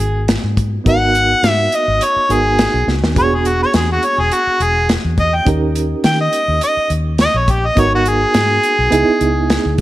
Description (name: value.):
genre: straight-eighth soul blues.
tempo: 104 BPM.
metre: 4/4.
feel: swing 54% on 16ths.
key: G# minor.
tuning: A4 = 439 Hz.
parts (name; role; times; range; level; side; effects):
warm harmonica; melody; 0.0-9.8 s; F#4 to G5; -15 LUFS; equal; overdrive.
reed electric piano; accompaniment; 0.0-9.8 s; B3 to A#4; -20 LUFS; right 4 dB; fast tremolo.
vintage muted fingered electric bass; bass; 0.0-9.8 s; E1 to D#3; -18 LUFS; left 1 dB; none.
warm soul drum kit; drums; 0.0-9.8 s; hi-hat, kick drum, snare drum; -18 LUFS; equal; none.
room: light reverb, small room reverb.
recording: none.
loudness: -12 LUFS.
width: side -15 dB against mid.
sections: 0.0-9.8 A section.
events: harmonica solo 0.0-9.8; drum fill 2.9.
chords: 0.0 G#m7; 3.2 E7; 5.5 D#7; 7.8 G#m7; 8.9 C#m7.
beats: 0.29 | 0.86 1.44 2.01 2.59 | 3.16 3.74 4.31 4.89 | 5.46 6.04 6.62 7.19 | 7.77 8.35 8.92 9.50.